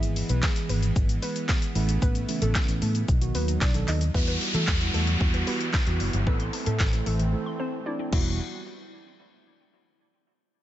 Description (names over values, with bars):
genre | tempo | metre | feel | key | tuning
dance-pop | 113 BPM | 4/4 | straight | E minor | A4 = 437 Hz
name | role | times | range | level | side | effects
soft round pluck | melody | 0.0-8.4 s | A3 to D#5 | -35 LUFS | equal | chorus, low-pass filter, ping-pong delay
mellow tine electric piano | accompaniment | 0.0-8.4 s | D#3 to A4 | -34 LUFS | right 5 dB | lush chorus, sidechain pumping, low-pass filter
soft supersaw | sustained chords | 0.0-8.4 s | C#3 to F#4 | -34 LUFS | right 1 dB | sidechain pumping, low-pass filter
vintage muted fingered electric bass | bass | 0.0-8.4 s | E1 to E3 | -26 LUFS | equal | sidechain pumping
deep house drum kit | drums | 0.0-8.2 s | crash cymbal, handclaps, hi-hat, kick drum, shaker, snare drum | -27 LUFS | equal | none
egg shaker | percussion | 0.0-4.1 s | none | -49 LUFS | left 9 dB | none
hollow square pluck | arpeggios | 4.1-8.4 s | E3 to E6 | -40 LUFS | left 4 dB | chorus, sidechain pumping, low-pass filter, ping-pong delay
downlifter | sound effects | 4.1-8.4 s | none | -32 LUFS | equal | none
room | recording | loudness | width
little or no reverb | nothing above 7.9 kHz | -23 LUFS | side -13 dB against mid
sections
0.0-4.1 A section; 4.1-8.4 B section; 8.4-10.5 C section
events
drop 0.0-4.1; break 7.3-8.4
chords
0.0 E/G#; 1.8 Aadd9; 3.1 B; 4.1 Emadd9; 6.3 Am; 8.1 Emadd9; 8.4 N.C.